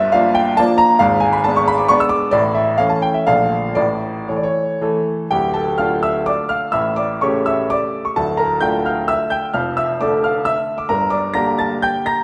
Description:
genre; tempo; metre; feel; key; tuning
classical, romantic triple-time dance for piano with dotted rhythms; 112-143 BPM; 3/4; rubato; D minor; A4 = 440 Hz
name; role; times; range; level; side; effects
clear baby grand piano; solo; 0.0-12.2 s; D1 to Bb6; -17 LUFS; equal; none
room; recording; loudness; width
moderate recital hall reverb, RT60 1.5 s; lossy compression artefacts; -17 LUFS; mono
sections
0.0-5.3 A section; 5.3-12.2 B section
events
none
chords
0.0 Gm7; 1.0 G#dim; 2.3 A; 3.3 Bbmaj7; 3.8 A; 5.3 Dm; 6.7 A7; 8.2 Dm; 9.5 Dm/F; 10.9 Gm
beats
0.11 0.56 | 0.99 1.44 1.90 | 2.32 2.78 3.27 | 3.77 4.29 4.80 | 5.30 5.79 6.28 | 6.74 7.22 7.71 | 8.17 8.63 9.10 | 9.54 10.00 10.46 | 10.89 11.35 11.83

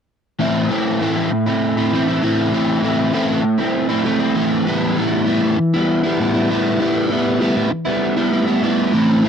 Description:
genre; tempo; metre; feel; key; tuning
rock; 197 BPM (eighths); 7/8; straight; A minor; A4 = 441 Hz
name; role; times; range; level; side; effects
crunchy overdriven guitar; riff; 0.4-9.3 s; A2 to E4; -15 LUFS; equal; flanger
room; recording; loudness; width
light reverb; dry, close 1970s-style studio recording; -15 LUFS; side -7 dB against mid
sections
0.4-9.3 A section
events
none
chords
0.4 Am; 4.7 Em/A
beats
| 0.40 0.70 1.00 1.31 1.61 1.92 2.22 | 2.52 2.83 3.13 3.44 3.74 4.04 4.35 | 4.65 4.96 5.26 5.57 5.87 6.18 6.48 | 6.79 7.09 7.40 7.70 8.01 8.31 8.62 | 8.92 9.23

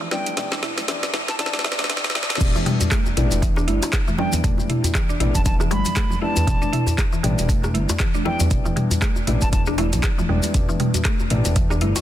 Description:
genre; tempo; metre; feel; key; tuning
afro house; 118 BPM; 4/4; swing 58% on 16ths; E minor; A4 = 440 Hz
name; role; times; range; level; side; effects
mallet-like synth pluck; arpeggios; 0.0-12.0 s; E3 to E4; -27 LUFS; equal; chorus, sidechain pumping, dub echo
felt-muted upright piano; stabs; 0.0-12.0 s; B3 to D5; -30 LUFS; left 5 dB; sidechain pumping, dub echo
smooth synth bass; bass; 0.0-11.9 s; E1 to E2; -23 LUFS; equal; tube saturation, sidechain pumping
congas; percussion; 0.0-11.9 s; none; -31 LUFS; right 4 dB; none
silver concert flute; melody; 0.1-9.6 s; G5 to B5; -31 LUFS; right 1 dB; dub echo
afro-pop drum kit; drums; 0.1-12.0 s; crash cymbal, handclaps, hi-hat, rim click, snare drum, toms; -25 LUFS; equal; overdrive
electronic kick drum; drums; 2.4-11.7 s; none; -21 LUFS; equal; overdrive
maracas; percussion; 2.4-12.0 s; none; -33 LUFS; left 5 dB; none
djembe; percussion; 2.6-12.0 s; none; -28 LUFS; left 1 dB; none
room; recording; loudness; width
light reverb, small room ambience; dense, heavily limited modern master, high-pass filter; -18 LUFS; side -12 dB against mid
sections
0.0-2.4 A section; 2.4-12.0 B section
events
build-up 0.0-2.4; drum fill 0.0-2.4; filter sweep on synth pluck 0.0-2.4; drop 2.4-12.0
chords
0.0 Em7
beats
| 0.37 0.88 1.39 1.90 | 2.41 2.92 3.42 3.93 | 4.44 4.95 5.46 5.97 | 6.47 6.98 7.49 8.00 | 8.51 9.02 9.53 10.04 | 10.54 11.05 11.56

